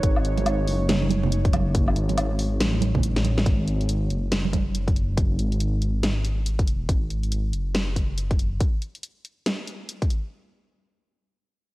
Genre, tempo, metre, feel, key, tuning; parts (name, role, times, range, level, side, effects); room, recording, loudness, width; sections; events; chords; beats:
deep dubstep; 140 BPM; 4/4; swing 61% on 16ths, half-time; A4 = 441 Hz
deep dark ambient pad; sustained chords; 0.0-3.4 s; G#3 to C#5; -33 LUFS; right 2 dB; chorus, built-in reverb, cassette tape
dark detuned saw bass; bass; 0.0-8.6 s; F#1 to A1; -24 LUFS; equal; transformer saturation
dubstep drum kit; drums; 0.0-10.2 s; hi-hat, snare drum, woodblock; -28 LUFS; equal; cassette tape
electronic kick drum; drums; 0.0-10.1 s; -23 LUFS; equal; cassette tape
congas; percussion; 0.4-4.6 s; -29 LUFS; right 6 dB; dub echo
little or no reverb; home recording on cassette; -21 LUFS; side -18 dB against mid
0.0-3.5 A section; 3.5-10.3 B section
drop 0.0-3.5; kick drops out 3.0-3.5; drum fill 3.1-3.5; filter sweep on detuned saw bass 3.5-8.6
0.0 G#5; 3.5 F#sus2
| 0.03 0.46 0.89 1.32 | 1.75 2.17 2.60 3.03 | 3.46 3.89 4.32 4.75 | 5.17 5.60 6.03 6.46 | 6.89 7.32 7.75 8.18 | 8.60 9.03 9.46 9.89